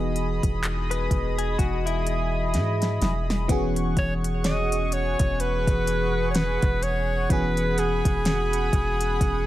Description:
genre	contemporary R&B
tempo	63 BPM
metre	4/4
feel	swing 58% on 16ths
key	E major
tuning	A4 = 440 Hz
part	FM electric piano	accompaniment	0.0-9.5 s	E3 to G#4	-30 LUFS	left 1 dB	chorus, phaser
part	chorused pulse-width pad	sustained chords	0.0-9.5 s	G#4 to D#6	-31 LUFS	right 2 dB	sidechain pumping
part	long sustained 808-style bass	bass	0.0-9.5 s	E1 to G#2	-27 LUFS	equal	none
part	smooth R&B drum kit	drums	0.2-9.5 s	handclaps, hi-hat, kick drum, snare drum	-26 LUFS	equal	overdrive
part	direct-recorded clean electric guitar	arpeggios	0.9-3.2 s	E4 to B4	-31 LUFS	left 6 dB	spring reverb, digital delay
part	bright alto saxophone	melody	4.0-9.5 s	G#4 to D#5	-27 LUFS	equal	none
part	glassy synth bell	texture	4.4-5.5 s	C#5	-39 LUFS	right 1 dB	none
room	digital ambience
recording	none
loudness	-22 LUFS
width	side -14 dB against mid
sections	0.0-3.5 A section; 3.5-9.5 B section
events	drum fill 2.5-3.5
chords	0.0 Emaj7; 3.5 E69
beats	0.63 1.59 2.54 | 3.49 4.44 5.39 6.35 | 7.30 8.25 9.21

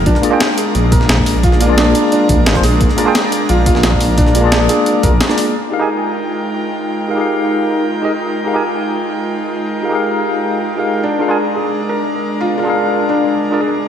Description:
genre	liquid drum and bass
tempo	175 BPM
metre	4/4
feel	straight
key	F dorian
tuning	A4 = 444 Hz
part	airy breathy pad	sustained chords	0.0-13.9 s	Ab3 to G5	-19 LUFS	equal	chorus, sidechain pumping
part	felt-muted upright piano	arpeggios	0.0-5.6, 11.0-13.9 s	D4 to Bb4	-19 LUFS	equal	analog delay
part	dark detuned saw bass	bass	0.0-5.2 s	F1 to D2	-14 LUFS	equal	none
part	breakbeat sampler-style drum kit	drums	0.1-5.4 s	hi-hat, snare drum	-18 LUFS	equal	studio reverb
part	electronic kick drum	drums	0.1-5.1 s	none	-16 LUFS	equal	studio reverb
part	tine electric piano	accompaniment	0.2-13.6 s	Bb3 to Ab5	-17 LUFS	left 1 dB	fast stereo tremolo, analog delay
room	wet lush hall reverb, RT60 2.1 s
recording	dreamy mix soaked in reverb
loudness	-12 LUFS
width	side -9 dB against mid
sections	0.0-5.5 A section; 5.5-13.9 B section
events	drop 0.0-5.5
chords	0.1 Bb7; 5.5 Fm11; 11.0 Bb7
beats	| 0.06 0.41 0.75 1.09 | 1.43 1.78 2.12 2.46 | 2.81 3.15 3.49 3.83 | 4.18 4.52 4.86 5.21 | 5.55 5.89 6.23 6.58 | 6.92 7.26 7.61 7.95 | 8.29 8.63 8.98 9.32 | 9.66 10.01 10.35 10.69 | 11.03 11.38 11.72 12.06 | 12.40 12.75 13.09 13.43 | 13.78

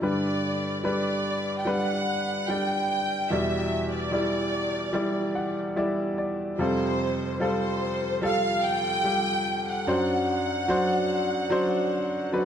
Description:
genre	pop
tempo	73 BPM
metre	4/4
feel	straight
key	G major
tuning	A4 = 440 Hz
part	warm studio violin section	melody	0.0-12.4 s	C5 to G5	-28 LUFS	equal	none
part	clear baby grand piano	accompaniment	0.0-12.4 s	E2 to F#5	-26 LUFS	equal	none
room	wet recital hall reverb, RT60 1.9 s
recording	dark, warm production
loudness	-24 LUFS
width	side -8 dB against mid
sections	0.0-12.4 A section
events	grand piano fill 4.9-6.6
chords	0.0 G; 3.3 Em7; 6.6 Fadd9; 9.9 D7/F#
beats	| 0.01 0.83 1.66 2.48 | 3.30 4.12 4.94 5.77 | 6.59 7.41 8.23 9.05 | 9.88 10.70 11.52 12.34

